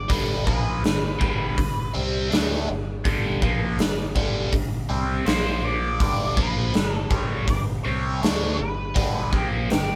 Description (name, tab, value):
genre	blues rock power trio and southern rock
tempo	81 BPM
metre	4/4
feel	straight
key	unclear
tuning	A4 = 440 Hz
part	octave-fuzz lead guitar	melody	0.0-10.0 s	G4 to D5	-33 LUFS	equal	distortion
part	biting overdriven guitar	riff	0.0-10.0 s	G2 to D4	-29 LUFS	equal	phaser
part	growling fingered electric bass	bass	0.0-10.0 s	G1 to D2	-32 LUFS	equal	overdrive
part	big rock drum kit	drums	0.1-9.9 s	hi-hat, kick drum, snare drum	-27 LUFS	equal	none
room	light reverb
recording	band playing live in one room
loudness	-24 LUFS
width	mono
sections	0.0-10.0 A section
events	none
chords	0.0 G; 5.3 Bb5; 6.0 G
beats	| 0.11 0.84 1.58 2.32 | 3.06 3.79 4.53 5.27 | 6.00 6.74 7.48 8.22 | 8.96 9.70